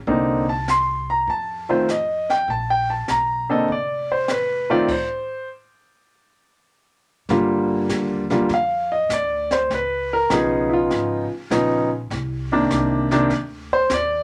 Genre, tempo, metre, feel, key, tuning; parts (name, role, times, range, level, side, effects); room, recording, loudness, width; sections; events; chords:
jazz piano trio; 100 BPM; 4/4; swing 68% on 8ths; Bb major, G minor from 7.3 s; A4 = 440 Hz
upright bass; bass; 0.0-14.2 s; F1 to G2; -33 LUFS; equal
clear concert grand piano; melody; 0.1-14.2 s; C3 to C6; -21 LUFS; equal
jazz brush drum kit; drums; 0.1-14.2 s; brushed snare drum, crash cymbal, hi-hat, kick drum, snare drum; -34 LUFS; equal
moderate small room ambience, RT60 0.5 s; -21 LUFS; mono
0.0-7.3 A section; 7.3-14.2 B section
stop 4.9-7.3; grand piano solo 7.3-14.2
0.1 Cm9; 1.3 F7; 2.5 Bbmaj9; 4.9 N.C.; 7.3 Gm7; 9.7 C#9; 12.1 Cm9